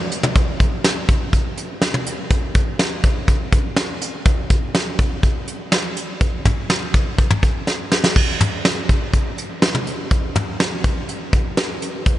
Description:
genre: pop.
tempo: 123 BPM.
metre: 4/4.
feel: straight.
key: none.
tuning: none.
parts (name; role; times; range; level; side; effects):
soft brush drum kit; drums; 0.1-12.2 s; crash cymbal, hi-hat, kick drum, snare drum, toms; -17 LUFS; equal; none.
room: moderate huge ambient reverb, RT60 9.2 s.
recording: nothing above 10.6 kHz.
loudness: -17 LUFS.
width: side -14 dB against mid.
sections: 0.0-8.2 A section; 8.2-12.2 B section.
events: drum fill 7.7-8.2.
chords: none.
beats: | 0.36 0.84 1.33 1.82 | 2.31 2.79 3.28 3.77 | 4.26 4.75 5.23 5.72 | 6.21 6.70 7.18 7.67 | 8.16 8.65 9.14 9.62 | 10.11 10.60 11.09 11.57 | 12.06.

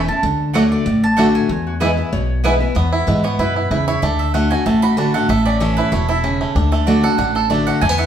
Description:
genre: bluegrass.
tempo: 190 BPM.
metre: 4/4.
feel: straight.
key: unclear.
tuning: A4 = 441 Hz.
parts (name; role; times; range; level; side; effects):
mandolin; melody; 0.0-2.4 s; C#5 to A5; -22 LUFS; right 3 dB; none.
picked steel-string acoustic guitar; accompaniment; 0.0-8.1 s; E2 to F#4; -18 LUFS; left 1 dB; none.
upright bass; bass; 0.0-8.1 s; E1 to G#2; -21 LUFS; equal; none.
mandolin; stabs; 0.5-8.1 s; A3 to B5; -24 LUFS; right 2 dB; none.
bluegrass banjo; arpeggios; 0.6-8.1 s; A3 to A4; -21 LUFS; right 4 dB; none.
lap resonator guitar; second line; 1.7-2.7 s; F#4 to C#5; -29 LUFS; left 6 dB; none.
room: wet large studio reverb, RT60 0.9 s.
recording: band playing live in one room.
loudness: -14 LUFS.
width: side -9 dB against mid.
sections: 0.0-2.8 A section; 2.8-8.1 B section.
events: mandolin solo 2.8-8.1.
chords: 0.2 D; 1.5 E; 4.0 D; 5.3 A; 6.6 D.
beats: | 0.23 0.55 0.86 1.18 | 1.50 1.81 2.13 2.44 | 2.76 3.08 3.39 3.71 | 4.03 4.34 4.66 4.98 | 5.29 5.61 5.92 6.24 | 6.56 6.87 7.19 7.51 | 7.82.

